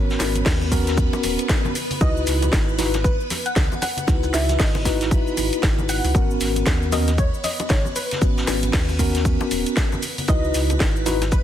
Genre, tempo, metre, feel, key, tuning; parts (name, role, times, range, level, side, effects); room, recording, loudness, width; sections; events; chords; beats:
deep house; 116 BPM; 4/4; swing 60% on 16ths; G# minor; A4 = 440 Hz
soft round pluck; melody; 0.0-11.4 s; B4 to F#5; -30 LUFS; equal; ensemble chorus, dub echo
mellow tine electric piano; stabs; 0.0-11.2 s; B3 to B4; -25 LUFS; left 1 dB; medium stereo tremolo, sidechain pumping, ping-pong delay
sub bass with octave; bass; 0.0-11.4 s; D#1 to D#2; -24 LUFS; equal; sidechain pumping
string machine, violins; texture; 0.0-11.4 s; B3 to B4; -33 LUFS; equal; ensemble chorus
house drum kit; drums; 0.1-11.4 s; cabasa, hi-hat, snare drum; -26 LUFS; equal
vintage brush drum kit; drums; 0.1-11.4 s; hi-hat, shaker, snare drum; -34 LUFS; equal; sidechain pumping on hats, high-pass filter on hats, soft clipping on snare, high-pass filter on snare, sidechain pumping on perc, high-pass filter on perc, high-pass filter on room
congas; percussion; 0.2-11.3 s; -32 LUFS; left 3 dB
electronic kick drum; drums; 0.5-11.4 s; -20 LUFS; equal
small room ambience; dense, heavily limited modern master, vinyl crackle; -18 LUFS; side -11 dB against mid
0.0-11.4 A section
0.0 G#m11; 1.8 C#m11; 6.1 G#m11; 10.0 C#m11
0.46 0.97 1.49 | 2.01 2.53 3.04 3.56 | 4.08 4.60 5.11 5.63 | 6.15 6.67 7.18 7.70 | 8.22 8.73 9.25 9.77 | 10.29 10.80 11.32